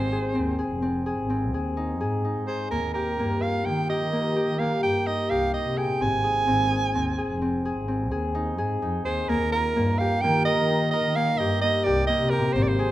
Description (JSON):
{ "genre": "contemporary instrumental, chamber music in an uneven meter", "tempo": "128 BPM", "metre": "7/4", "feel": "straight", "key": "unclear", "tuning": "A4 = 440 Hz", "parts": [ { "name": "breathy soprano saxophone", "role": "melody", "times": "0.0-12.9 s", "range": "Bb4 to Ab5", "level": "-26 LUFS", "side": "right 3 dB", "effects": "none" }, { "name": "Celtic harp", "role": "arpeggios", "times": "0.0-12.9 s", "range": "Bb3 to Bb4", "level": "-26 LUFS", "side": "left 2 dB", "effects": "none" }, { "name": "dark double bass", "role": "bass", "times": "0.0-12.9 s", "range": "F1 to Eb3", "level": "-28 LUFS", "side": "equal", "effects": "none" } ], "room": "moderate recital hall reverb, RT60 1.7 s", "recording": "close, detailed microphones", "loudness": "-22 LUFS", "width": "side -14 dB against mid", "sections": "0.0-9.3 A section; 9.3-12.9 A section", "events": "none", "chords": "0.0 Ab; 2.7 Ebadd9; 6.0 Ab; 9.3 Ebadd9" }